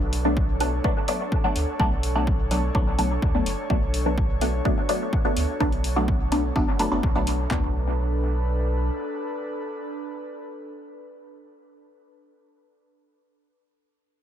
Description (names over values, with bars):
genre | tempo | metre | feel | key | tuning
dub techno | 126 BPM | 4/4 | straight | B minor | A4 = 441 Hz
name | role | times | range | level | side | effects
airy breathy pad | sustained chords | 0.0-12.1 s | D4 to C#5 | -32 LUFS | equal | chorus, sidechain pumping
warm sub bass | bass | 0.0-8.9 s | F#1 to D2 | -26 LUFS | equal | sidechain pumping
electronic hi-hat | drums | 0.1-7.4 s | none | -34 LUFS | left 2 dB | none
filtered dub chord stab | stabs | 0.2-12.2 s | F#3 to D4 | -26 LUFS | equal | phaser, sidechain pumping, dub echo
punchy analog drum machine | drums | 0.4-7.6 s | handclaps, kick drum, toms | -25 LUFS | equal | none
room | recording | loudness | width
light reverb | none | -22 LUFS | side -10 dB against mid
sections
0.0-7.5 A section; 7.5-11.3 B section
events
none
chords
0.0 Bm7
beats
0.37 0.84 1.32 | 1.80 2.27 2.75 3.22 | 3.70 4.18 4.65 5.13 | 5.61 6.08 6.56 7.03 | 7.51 7.99 8.46 8.94 | 9.41 9.89 10.37 10.84